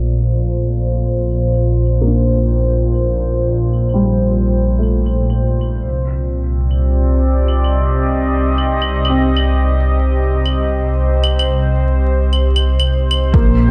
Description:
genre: future garage.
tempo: 128 BPM.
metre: 4/4.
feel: swing 67% on 16ths.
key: C minor.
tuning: A4 = 441 Hz.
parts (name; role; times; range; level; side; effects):
felt-muted upright piano; accompaniment; 0.0-5.9, 9.1-13.7 s; G3 to D4; -24 LUFS; equal; sidechain pumping, low-pass filter, digital delay.
warbly tape-like pad; sustained chords; 0.0-13.7 s; Bb2 to Eb5; -21 LUFS; equal; chorus, built-in reverb, sidechain pumping.
dark detuned saw bass; bass; 0.0-13.7 s; Bb1 to C2; -18 LUFS; equal; sidechain pumping.
claves; drums; 0.1-13.2 s; none; -25 LUFS; equal; overdrive.
electronic kick drum; drums; 13.3-13.5 s; none; -15 LUFS; equal; overdrive.
room: light reverb.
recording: vinyl crackle, low-pass filter.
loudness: -16 LUFS.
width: mono.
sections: 0.0-13.3 A section.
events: filter sweep on felt piano 0.0-13.3; filter sweep 0.0-13.3.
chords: 0.0 Bbmaj9; 5.8 Cm9.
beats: | 0.21 0.68 1.15 1.62 | 2.09 2.56 3.02 3.49 | 3.96 4.43 4.90 5.37 | 5.84 6.31 6.78 7.24 | 7.71 8.18 8.65 9.12 | 9.59 10.06 10.53 10.99 | 11.46 11.93 12.40 12.87 | 13.34.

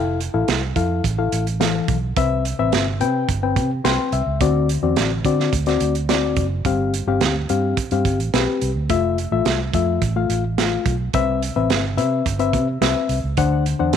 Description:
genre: uptempo 1960s-style soul.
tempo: 107 BPM.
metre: 4/4.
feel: straight.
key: C major.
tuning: A4 = 441 Hz.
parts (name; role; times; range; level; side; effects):
reed electric piano; accompaniment; 0.0-14.0 s; G2 to C6; -21 LUFS; left 7 dB; none.
vintage muted fingered electric bass; bass; 0.0-14.0 s; F1 to D3; -22 LUFS; right 2 dB; none.
crunchy breakbeat drum kit; drums; 0.2-14.0 s; hi-hat, kick drum, snare drum; -23 LUFS; right 7 dB; none.
room: light reverb, studio ambience.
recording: 1960s-style stereo with parts hard left and right.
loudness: -18 LUFS.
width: side -8 dB against mid.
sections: 0.0-14.0 A section.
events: reed electric piano fill 3.6-4.4.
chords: 0.0 Fmaj7; 2.2 Cmaj7; 4.4 D7; 6.7 G7sus4; 8.9 Fmaj7; 11.1 Cmaj7; 13.4 D7.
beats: 0.48 1.04 1.60 | 2.16 2.72 3.29 3.85 | 4.41 4.97 5.53 6.09 | 6.65 7.21 7.77 8.33 | 8.89 9.45 10.01 10.57 | 11.13 11.69 12.25 12.81 | 13.37 13.93.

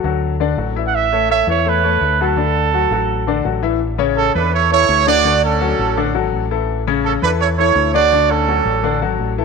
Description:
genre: latin.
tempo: 167 BPM.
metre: 4/4.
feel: straight.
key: A major.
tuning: A4 = 444 Hz.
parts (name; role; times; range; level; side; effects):
clear grand piano; accompaniment; 0.0-9.4 s; C#3 to E5; -19 LUFS; left 13 dB; none.
deep dub fingered electric bass; bass; 0.0-9.4 s; G#1 to E2; -21 LUFS; equal; none.
clear trumpet; melody; 0.9-3.4 s; A4 to F#5; -17 LUFS; right 10 dB; none.
clear trumpet section; melody; 4.2-9.0 s; C#4 to D5; -15 LUFS; right 10 dB; none.
room: moderate plate reverb, RT60 3.0 s.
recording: 1960s-style stereo with parts hard left and right.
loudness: -14 LUFS.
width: side -5 dB against mid.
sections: 0.0-3.8 A section; 3.8-9.4 B section.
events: none.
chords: 0.0 D; 0.9 A; 2.4 D; 3.8 A; 5.2 D; 6.7 A; 8.1 D.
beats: 0.22 0.58 | 0.94 1.30 1.66 2.02 | 2.38 2.73 3.09 3.45 | 3.81 4.17 4.53 4.89 | 5.25 5.61 5.97 6.33 | 6.68 7.04 7.40 7.76 | 8.12 8.48 8.84 9.20.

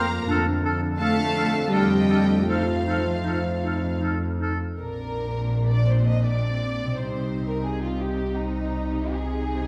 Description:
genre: cinematic, emotional film score for orchestra.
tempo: 82 BPM.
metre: 3/4.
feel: uneven beats, rubato.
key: Bb mixolydian from 4.8 s.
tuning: A4 = 440 Hz.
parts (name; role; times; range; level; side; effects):
dark studio violin section; melody; 0.0-9.7 s; Eb4 to Bb5; -38 LUFS; equal; none.
clear oboe; second line; 0.0-4.6 s; A4; -34 LUFS; equal; none.
dark chamber violin section; second line; 0.0-9.7 s; Eb4 to F5; -34 LUFS; equal; none.
large flute ensemble; second line; 0.0-4.5 s; F6; -37 LUFS; equal; none.
warm clarinet; second line; 0.0-4.5 s; D4 to Eb4; -33 LUFS; equal; none.
dark studio viola section; accompaniment; 0.0-9.7 s; C4 to Bb4; -35 LUFS; equal; none.
mellow French horn section; sustained chords; 0.0-4.4 s; D3 to F4; -34 LUFS; equal; none.
dark chamber cello section; bass; 0.0-9.7 s; Bb2 to Bb3; -31 LUFS; equal; none.
rich studio double bass section; bass; 0.0-9.7 s; Bb1 to F2; -28 LUFS; equal; none.
room: wet recital hall reverb, RT60 1.7 s.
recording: recorded in a church or concert hall.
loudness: -24 LUFS.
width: mono.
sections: 0.0-4.8 A section; 4.8-9.7 B section.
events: none.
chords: 0.3 Dm/F; 2.5 F7; 4.8 Bbadd9; 7.0 Cm.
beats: | 0.30 1.01 1.74 | 2.51 3.28 4.04 | 4.79 5.52 6.24 | 6.95 7.65 8.36 | 9.11.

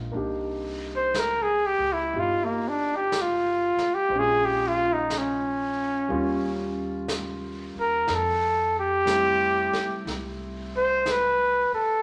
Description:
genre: jazz ballad.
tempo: 60 BPM.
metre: 4/4.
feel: swing 66% on 8ths.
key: C minor.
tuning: A4 = 440 Hz.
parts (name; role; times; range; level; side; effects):
warm concert grand piano; accompaniment; 0.0-12.0 s; G3 to C5; -35 LUFS; equal; none.
upright bass; bass; 0.0-11.8 s; G1 to F2; -41 LUFS; equal; none.
jazz brush drum kit; drums; 0.2-12.0 s; brushed snare drum, hi-hat, snare drum; -39 LUFS; equal; none.
warm trumpet; melody; 1.0-12.0 s; Bb3 to C5; -25 LUFS; equal; none.
room: wet large studio reverb, RT60 1.2 s.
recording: none.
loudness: -25 LUFS.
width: mono.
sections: 0.1-12.0 A section.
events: trumpet solo 0.1-12.0.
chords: 0.1 Cm9; 4.1 Bbm7; 6.1 Eb9; 8.1 Fmaj9.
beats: | 0.15 1.14 2.14 3.13 | 4.12 5.11 6.10 7.09 | 8.08 9.07 10.06 11.05.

